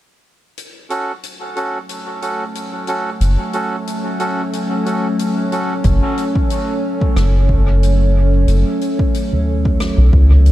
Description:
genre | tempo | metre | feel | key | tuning
ambient dub | 91 BPM | 4/4 | swing 55% on 16ths | F# minor | A4 = 440 Hz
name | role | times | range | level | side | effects
warbly tape-like pad | sustained chords | 1.9-10.5 s | F#3 to C#5 | -20 LUFS | equal | chorus, built-in reverb
soft-mallet drum kit | drums | 0.6-10.5 s | hi-hat, rim click, toms | -27 LUFS | left 1 dB | dub echo
melodica | stabs | 0.9-5.7 s | C#4 to A4 | -23 LUFS | right 1 dB | low-pass filter, dub echo
round analog bass | bass | 3.2-10.5 s | F#1 to C#2 | -11 LUFS | equal | tube saturation
electronic kick drum | drums | 5.8-10.3 s | none | -18 LUFS | equal | overdrive
room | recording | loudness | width
little or no reverb | dark, warm production | -14 LUFS | side -15 dB against mid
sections
0.6-5.8 A section; 5.8-10.5 B section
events
fade-in on ambient pad 0.6-5.8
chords
0.6 F#m

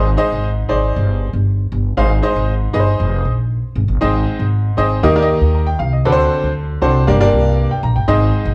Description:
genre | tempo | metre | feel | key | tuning
uptempo 1960s-style soul | 118 BPM | 4/4 | straight | unclear | A4 = 441 Hz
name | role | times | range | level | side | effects
clear grand piano | accompaniment | 0.0-8.5 s | G2 to Bb5 | -19 LUFS | equal | none
upright bass | bass | 0.0-8.5 s | F1 to Eb2 | -18 LUFS | equal | none
room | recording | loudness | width
moderate large studio reverb, RT60 1.2 s | band playing live in one room, cassette tape | -16 LUFS | mono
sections
0.0-4.0 A section; 4.0-8.5 B section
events
none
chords
0.0 Ab; 5.0 Eb; 6.0 D7; 7.1 Gm

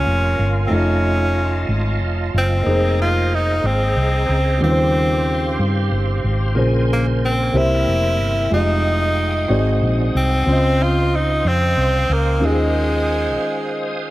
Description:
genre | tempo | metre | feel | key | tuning
slow gospel | 62 BPM (dotted quarters) | 6/8 | straight | unclear | A4 = 440 Hz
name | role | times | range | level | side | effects
edgy tenor saxophone | melody | 0.0-14.1 s | Ab3 to F4 | -21 LUFS | equal | tape echo
dark concert grand piano | accompaniment | 0.0-14.1 s | Ab2 to Eb5 | -23 LUFS | equal | tape echo
bright tonewheel organ | sustained chords | 0.0-14.1 s | Ab3 to Eb6 | -27 LUFS | right 3 dB | fast rotary speaker, chorus vibrato
hollow-body short-scale fingered electric bass | bass | 0.0-13.4 s | F1 to G2 | -19 LUFS | equal | none
room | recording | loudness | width
light reverb, studio reverb | echo-heavy mix | -16 LUFS | side -16 dB against mid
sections
0.0-14.1 A section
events
break 13.4-14.1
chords
0.0 Bbm7; 0.7 F7alt; 2.7 Bb9sus4/F; 4.6 Eb13; 6.6 Bbm9; 7.5 C7; 8.5 Fm9; 9.5 Ab7; 10.5 Dbmaj9; 12.4 Eb9sus4

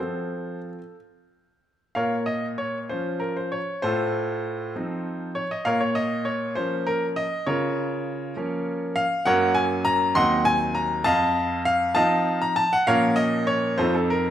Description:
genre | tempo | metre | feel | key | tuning
classical-period piano sonatina | 66 BPM (dotted quarters) | 6/8 | rubato | Bb minor | A4 = 440 Hz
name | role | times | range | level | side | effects
clear baby grand piano | solo | 0.0-14.3 s | Eb2 to C6 | -22 LUFS | equal | none
room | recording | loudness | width
wet recital hall reverb, RT60 1.4 s | none | -21 LUFS | side -10 dB against mid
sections
0.0-2.0 A section; 2.0-14.3 A section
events
none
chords
0.0 F; 2.0 Bbm; 3.8 F7/A; 5.7 Bbm; 7.5 Bbm/Db; 9.3 Gb; 10.2 Cdim/Eb; 11.1 F7; 12.9 Bbm; 13.8 F7

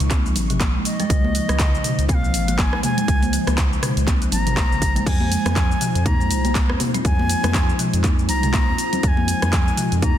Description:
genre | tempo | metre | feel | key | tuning
afro house | 121 BPM | 4/4 | swing 58% on 16ths | F minor | A4 = 441 Hz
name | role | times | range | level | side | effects
ethereal airy pad | sustained chords | 0.0-10.2 s | Ab3 to Db6 | -29 LUFS | left 1 dB | ensemble chorus, built-in reverb, sidechain pumping
round analog bass | bass | 0.0-10.2 s | Ab1 to F2 | -23 LUFS | equal | sidechain pumping
house drum kit | drums | 0.0-10.1 s | crash cymbal, handclaps, hi-hat, rim click, shaker, toms | -25 LUFS | equal | overdrive
folk marimba with soft mallets | arpeggios | 0.1-10.2 s | C3 to Eb4 | -27 LUFS | equal | sidechain pumping, tape echo
electronic kick drum | drums | 0.1-10.1 s | none | -20 LUFS | equal | overdrive
congas | percussion | 0.1-10.1 s | none | -29 LUFS | left 3 dB | none
bright reedy bansuri | melody | 0.8-10.2 s | Eb5 to Bb5 | -26 LUFS | equal | tape echo
room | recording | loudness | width
light reverb, digital ambience | dense, heavily limited modern master | -17 LUFS | side -11 dB against mid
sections
0.0-10.2 A section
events
none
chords
0.0 Dbsus2; 5.1 Fm7

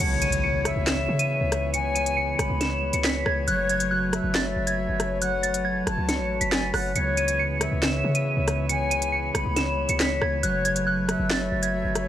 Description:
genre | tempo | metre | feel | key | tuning
hip hop, drill | 138 BPM | 4/4 | half-time | C# minor | A4 = 440 Hz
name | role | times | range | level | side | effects
soft synth bell | melody | 0.0-12.1 s | F#6 to E7 | -28 LUFS | right 3 dB | chorus, low-pass filter, tape echo
jazz flute | second line | 0.0-12.1 s | C#5 to B5 | -32 LUFS | left 4 dB | tape echo
concert harp | accompaniment | 0.0-12.1 s | C#3 to F#4 | -28 LUFS | left 1 dB | low-pass filter
pipe organ, cornet | sustained chords | 0.0-12.1 s | E3 to C#5 | -35 LUFS | right 1 dB | none
hard-hitting 808-style bass | bass | 0.0-12.1 s | F#1 to C#3 | -30 LUFS | equal | none
drill drum kit | drums | 0.0-12.1 s | crash cymbal, handclaps, hi-hat, rim click, snare drum | -27 LUFS | equal | none
impact | sound effects | 0.0-1.7 s | none | -32 LUFS | equal | none
room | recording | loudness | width
studio reverb | none | -22 LUFS | side -11 dB against mid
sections
0.0-12.1 A section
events
impact 0.0-1.7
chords
0.0 C#m7; 3.5 F#madd9; 7.0 C#m7; 10.4 F#madd9

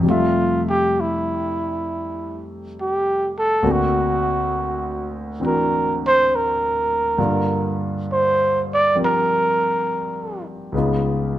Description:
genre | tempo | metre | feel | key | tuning
jazz ballad | 67 BPM | 4/4 | swing 67% on 8ths | F major | A4 = 440 Hz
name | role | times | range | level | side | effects
warm concert grand piano | accompaniment | 0.0-11.4 s | Db2 to E5 | -23 LUFS | left 1 dB | none
breathy trumpet | melody | 0.1-10.4 s | E4 to D5 | -19 LUFS | right 1 dB | none
room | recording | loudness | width
moderate large studio reverb, RT60 1.2 s | close, detailed microphones | -18 LUFS | side -13 dB against mid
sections
0.0-11.4 A section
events
trumpet solo 0.0-11.4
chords
0.0 Fmaj9; 3.6 D7b13; 7.2 Gm7; 10.7 Db7

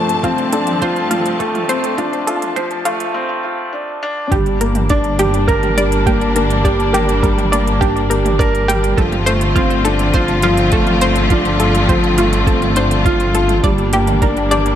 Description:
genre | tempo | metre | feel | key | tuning
piano and strings electronica | 103 BPM | 4/4 | straight | G minor | A4 = 440 Hz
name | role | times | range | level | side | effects
rich symphonic string section | sustained chords | 0.0-14.8 s | G2 to A5 | -20 LUFS | left 2 dB | none
analog pluck | arpeggios | 0.0-14.6 s | F4 to D5 | -20 LUFS | right 1 dB | chorus, sidechain pumping, tape echo
felt-muted upright piano | riff | 0.0-14.8 s | F3 to Bb4 | -18 LUFS | left 1 dB | tape echo
organic electronic drum kit | drums | 0.1-14.8 s | hi-hat, toms | -27 LUFS | right 3 dB | overdrive, small room ambience
electronic kick drum | drums | 0.2-14.3 s | none | -18 LUFS | equal | overdrive, small room ambience
dark detuned saw bass | bass | 4.3-14.8 s | G1 | -19 LUFS | equal | sidechain pumping
room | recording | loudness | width
moderate echo chamber reverb, RT60 2.2 s | high-pass filter | -13 LUFS | side -10 dB against mid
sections
0.0-4.3 A section; 4.3-14.8 B section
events
build-up 0.0-4.3; break 3.2-4.3; drop 4.3-14.8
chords
0.0 Dm7/G; 4.3 Gm; 9.0 Dm7/G; 13.6 Gm

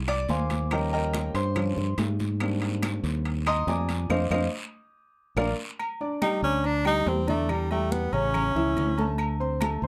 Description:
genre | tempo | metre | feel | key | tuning
Afro-Cuban jazz | 142 BPM | 4/4 | straight | Eb major | A4 = 437 Hz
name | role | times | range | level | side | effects
fingered electric bass | bass | 0.0-9.9 s | A1 to Ab2 | -31 LUFS | equal | none
warm grand piano | accompaniment | 0.1-9.9 s | Db3 to Eb6 | -31 LUFS | equal | none
claves | percussion | 0.1-9.8 s | none | -41 LUFS | equal | none
congas | percussion | 0.1-9.9 s | none | -37 LUFS | equal | none
timbales and agogo bells | percussion | 0.1-9.8 s | none | -37 LUFS | equal | none
guiro | percussion | 0.3-5.5 s | none | -44 LUFS | equal | none
bright tenor saxophone | melody | 6.2-9.2 s | G3 to Eb4 | -30 LUFS | equal | none
room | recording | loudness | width
little or no reverb | close, detailed microphones | -27 LUFS | mono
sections
0.0-5.8 A section; 5.8-9.9 A section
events
grand piano solo 0.0-5.8; band accent 4.1-5.8; drum fill 5.2-5.8; tenor saxophone solo 5.8-9.9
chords
0.0 Fm7; 0.7 Eb7; 2.4 Abmaj9#11; 4.1 F5; 5.0 Bb; 5.8 Dsus4; 7.5 Em7; 8.3 A; 9.2 D7(no3)

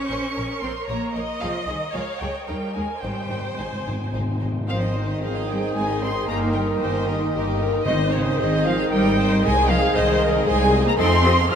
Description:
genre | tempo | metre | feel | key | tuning
quick classical-period movement for symphony orchestra | 114 BPM | 3/4 | straight | Ab major | A4 = 440 Hz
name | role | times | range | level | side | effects
rich chamber violin section | melody | 0.0-11.6 s | Db5 to F6 | -28 LUFS | equal | none
rich studio viola section | accompaniment | 0.0-11.6 s | G4 to Eb5 | -28 LUFS | left 1 dB | none
rich symphonic cello section | bass | 0.0-11.6 s | Db3 to F4 | -27 LUFS | equal | none
rich chamber violin section | second line | 0.1-11.6 s | C4 to F5 | -32 LUFS | right 1 dB | none
clear chamber double bass section | bass | 0.1-11.6 s | G1 to F2 | -26 LUFS | left 1 dB | none
timpani | percussion | 3.0-4.7, 7.9-8.6 s | Ab2 | -30 LUFS | left 1 dB | none
large flute ensemble | second line | 4.7-11.6 s | Db5 to F6 | -29 LUFS | right 1 dB | none
mellow clarinet | second line | 4.7-11.6 s | Ab4 to C5 | -29 LUFS | right 2 dB | none
warm oboe | second line | 4.7-11.6 s | Eb5 | -34 LUFS | left 3 dB | none
warm bassoon | accompaniment | 4.7-11.6 s | Eb3 to F3 | -31 LUFS | left 4 dB | none
warm French horn section | sustained chords | 4.7-11.2 s | Ab3 to Eb4 | -28 LUFS | right 2 dB | stereo widening
room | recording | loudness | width
wet huge ambient reverb, RT60 9.2 s | in a vast, echoing space | -19 LUFS | side -8 dB against mid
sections
0.0-4.7 A section; 4.7-11.6 A section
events
timpani fill 3.0-4.7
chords
0.0 Bbm; 1.4 Ab; 1.9 Bbm7/Db; 2.5 Eb; 3.0 Ab; 6.3 Eb/G; 7.9 Ab; 9.4 Ab/C; 11.0 F7

